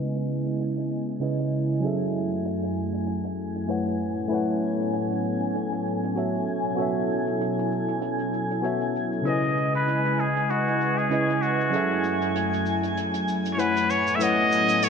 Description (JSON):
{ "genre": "sunset chillout", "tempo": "97 BPM", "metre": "4/4", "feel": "swing 56% on 16ths", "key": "unclear", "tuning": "A4 = 440 Hz", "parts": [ { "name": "tine electric piano", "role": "accompaniment", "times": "0.0-14.9 s", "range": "C#3 to F#5", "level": "-27 LUFS", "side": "moving between left 5 dB and right 5 dB", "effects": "auto-pan, digital delay" }, { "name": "airy breathy pad", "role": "sustained chords", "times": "0.0-14.9 s", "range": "F#2 to G#5", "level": "-28 LUFS", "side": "equal", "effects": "chorus" }, { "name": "twinkling granular texture", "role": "texture", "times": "1.0-14.9 s", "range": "G#5 to G#6", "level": "-34 LUFS", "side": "left 1 dB", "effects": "built-in reverb" }, { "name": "hi-hat and cabasa", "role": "drums", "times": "0.2-14.9 s", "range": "none", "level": "-39 LUFS", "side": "right 6 dB", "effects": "low-pass filter on hats, low-pass filter on perc, low-pass filter on snare, low-pass filter on room" }, { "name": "trumpet with straight mute", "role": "melody", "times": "9.3-14.9 s", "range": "F#4 to E5", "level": "-24 LUFS", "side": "equal", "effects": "ping-pong delay" } ], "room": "wet lush hall reverb, RT60 2.1 s", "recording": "bright 1980s-style digital production, low-pass filter", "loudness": "-23 LUFS", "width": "side -6 dB against mid", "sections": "0.0-14.9 A section", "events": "filter sweep on drum 0.0-14.9; filter sweep on analog synth pad 0.0-14.9; filter sweep 0.0-14.9", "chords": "0.0 C#m9; 1.8 F#m9; 4.0 A69; 6.5 B9sus4; 9.3 C#m9; 11.7 F#m9; 13.9 A69" }